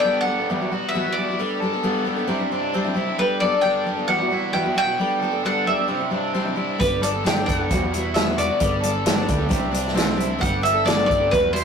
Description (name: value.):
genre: folk rock and heartland rock.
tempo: 133 BPM.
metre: 4/4.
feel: straight.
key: G major.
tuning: A4 = 439 Hz.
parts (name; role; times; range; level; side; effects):
bowl-back mandolin; melody; 0.0-11.6 s; B4 to G5; -22 LUFS; equal; tape echo.
picked steel-string acoustic guitar; accompaniment; 0.0-11.6 s; E2 to A4; -25 LUFS; left 1 dB; none.
biting overdriven guitar; riff; 0.0-11.6 s; E2 to A4; -26 LUFS; equal; none.
hollow-body short-scale picked electric bass; bass; 6.8-11.6 s; E1 to D2; -29 LUFS; right 1 dB; none.
vintage drum kit; drums; 6.8-11.6 s; hi-hat, kick drum, snare drum; -23 LUFS; right 1 dB; none.
room: moderate studio reverb, RT60 0.6 s.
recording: rough rehearsal-room recording, tube saturation.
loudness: -19 LUFS.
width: side -6 dB against mid.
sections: 0.0-11.6 A section.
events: none.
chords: 0.5 Emadd9; 1.4 Gadd9; 2.3 Cadd9; 3.2 Gadd9; 4.1 Emadd9; 5.0 Gadd9; 5.9 Cadd9; 6.8 Gadd9; 7.7 Emadd9; 8.6 Gadd9; 9.5 Cadd9; 10.4 Gadd9.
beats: 0.04 0.49 0.94 | 1.39 1.84 2.29 2.74 | 3.19 3.65 4.10 4.55 | 5.00 5.45 5.90 6.35 | 6.80 7.26 7.71 8.16 | 8.61 9.06 9.51 9.96 | 10.41 10.87 11.32.